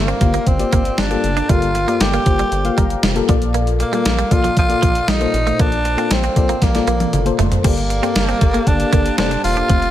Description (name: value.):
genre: 1980s-style pop.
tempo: 117 BPM.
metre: 4/4.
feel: straight.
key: unclear.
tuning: A4 = 443 Hz.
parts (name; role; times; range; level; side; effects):
growling tenor saxophone; melody; 0.0-9.9 s; Bb3 to G4; -20 LUFS; equal; none.
FM electric piano with tremolo; accompaniment; 0.0-9.9 s; G2 to Bb5; -22 LUFS; left 6 dB; none.
rubbery square bass; bass; 0.0-9.9 s; E1 to Bb1; -21 LUFS; equal; none.
direct-recorded clean electric guitar; riff; 0.1-9.8 s; F3 to D4; -26 LUFS; right 7 dB; wide subtle chorus.
clean 12-bit digital drum machine; drums; 0.1-9.9 s; crash cymbal, hi-hat, kick drum, snare drum, toms; -18 LUFS; equal; gated reverb.
chorused pulse-width pad; sustained chords; 7.6-9.9 s; Bb3 to A5; -27 LUFS; right 1 dB; none.
room: light reverb.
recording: none.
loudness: -14 LUFS.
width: side -12 dB against mid.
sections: 0.0-7.6 A section; 7.6-9.9 B section.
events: FM electric piano fill 2.5-3.5; drum fill 6.6-7.6.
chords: 0.0 Gm7; 3.3 Bbmaj7; 7.6 Gmadd9.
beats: 0.47 0.98 | 1.49 2.00 2.52 3.03 | 3.54 4.06 4.57 5.08 | 5.59 6.11 6.62 7.13 | 7.64 8.16 8.67 9.18 | 9.70.